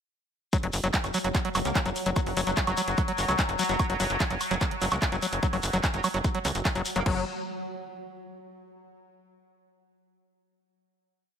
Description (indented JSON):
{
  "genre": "psychedelic trance",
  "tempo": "147 BPM",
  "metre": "4/4",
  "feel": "straight",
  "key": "unclear",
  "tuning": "A4 = 440 Hz",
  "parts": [
    { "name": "bubbling stepped-filter texture", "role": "sustained chords", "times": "0.9-7.1 s", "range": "F#3", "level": "-33 LUFS", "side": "left 1 dB", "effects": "chorus, built-in reverb, sidechain pumping" },
    { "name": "overdriven acid bass", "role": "riff", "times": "0.5-7.2 s", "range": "F#3", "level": "-31 LUFS", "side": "moving between left 5 dB and right 4 dB", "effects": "distortion, auto-pan, sidechain pumping, digital delay" },
    { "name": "electronic kick drum", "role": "drums", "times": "0.5-7.1 s", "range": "none", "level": "-28 LUFS", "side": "equal", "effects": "none" },
    { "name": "techno drum kit", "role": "drums", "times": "0.5-7.1 s", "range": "crash cymbal, handclaps, hi-hat, woodblock", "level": "-32 LUFS", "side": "right 2 dB", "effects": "none" },
    { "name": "shekere", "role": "percussion", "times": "0.5-7.0 s", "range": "none", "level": "-37 LUFS", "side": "left 4 dB", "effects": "none" },
    { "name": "tight sequencer bass", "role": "bass", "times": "0.6-7.2 s", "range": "F#1 to C#2", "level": "-31 LUFS", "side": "equal", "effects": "none" },
    { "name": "metallic wobble bass", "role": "second line", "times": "1.7-7.1 s", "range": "F#3 to A#3", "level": "-40 LUFS", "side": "right 6 dB", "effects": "none" }
  ],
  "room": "light reverb",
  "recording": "none",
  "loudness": "-25 LUFS",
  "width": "side -8 dB against mid",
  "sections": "0.5-7.1 drop; 7.1-8.7 final chord",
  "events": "drop 0.5-7.1",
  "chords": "0.5 F#5; 7.1 N.C.",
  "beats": "| 0.53 0.94 1.35 1.75 | 2.16 2.57 2.98 3.39 | 3.79 4.20 4.61 5.02 | 5.43 5.84 6.24 6.65 | 7.06"
}